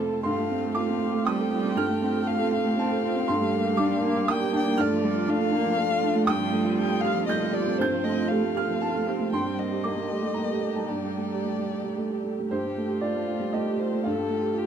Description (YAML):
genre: neoclassical piano and strings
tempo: 118 BPM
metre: 3/4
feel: rubato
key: unclear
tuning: A4 = 440 Hz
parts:
  - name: dark viola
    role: accompaniment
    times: 0.0-12.3 s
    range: G3 to A4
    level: -29 LUFS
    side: right 4 dB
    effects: none
  - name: warm upright piano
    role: accompaniment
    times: 0.0-14.7 s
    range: F2 to G6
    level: -26 LUFS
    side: right 2 dB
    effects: none
  - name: warm chamber string section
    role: sustained chords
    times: 0.0-14.7 s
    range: D3 to G4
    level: -34 LUFS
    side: equal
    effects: none
  - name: dark violin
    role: melody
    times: 0.2-14.7 s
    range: F4 to G5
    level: -31 LUFS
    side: left 6 dB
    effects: none
room: light reverb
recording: none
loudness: -23 LUFS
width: side -8 dB against mid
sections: 0.2-12.5 A section; 12.5-14.7 B section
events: none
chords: 0.2 Fadd9/G; 3.3 Gm; 6.3 Fadd9/G; 9.3 Gm; 10.9 Gmadd9; 12.5 Fadd9/G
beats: | 0.24 0.75 1.26 | 1.77 2.28 2.78 | 3.28 3.79 4.29 | 4.80 5.29 5.78 | 6.28 6.78 7.29 | 7.80 8.31 8.82 | 9.33 9.84 10.36 | 10.89 11.43 11.97 | 12.51 13.02 13.53 | 14.04 14.54